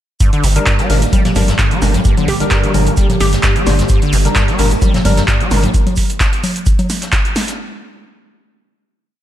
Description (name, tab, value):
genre	acid house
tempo	130 BPM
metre	4/4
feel	swing 53% on 16ths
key	G minor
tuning	A4 = 440 Hz
part	warbly tape-like pad	sustained chords	0.5-5.7 s	D3 to G4	-22 LUFS	right 1 dB	chorus, built-in reverb, sidechain pumping
part	liquid acid bass	riff	0.2-5.7 s	G2 to G3	-19 LUFS	equal	overdrive, ensemble chorus, ping-pong delay
part	electro analog drum machine	drums	0.2-7.6 s	cabasa, congas, handclaps, hi-hat, snare drum	-18 LUFS	equal	overdrive
part	electronic kick drum	drums	0.2-7.2 s	none	-15 LUFS	equal	overdrive
part	vintage brush drum kit	drums	0.2-7.6 s	hi-hat, shaker, snare drum	-28 LUFS	left 1 dB	sidechain pumping on hats, high-pass filter on hats, high-pass filter on snare, sidechain pumping on perc, high-pass filter on perc, high-pass filter on room
part	saturated sub bass	bass	0.4-5.7 s	G1	-15 LUFS	equal	sidechain pumping
part	percussive organ stab	stabs	0.6-5.6 s	G3 to C5	-22 LUFS	left 2 dB	ensemble chorus, ping-pong delay
part	hollow square pluck	melody	2.3-3.9 s	G4	-24 LUFS	equal	chorus, tape echo
room	moderate lush hall reverb, RT60 1.6 s, digital ambience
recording	dreamy mix soaked in reverb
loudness	-11 LUFS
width	side -12 dB against mid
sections	0.2-7.6 drop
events	drop 0.2-7.6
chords	0.2 Gm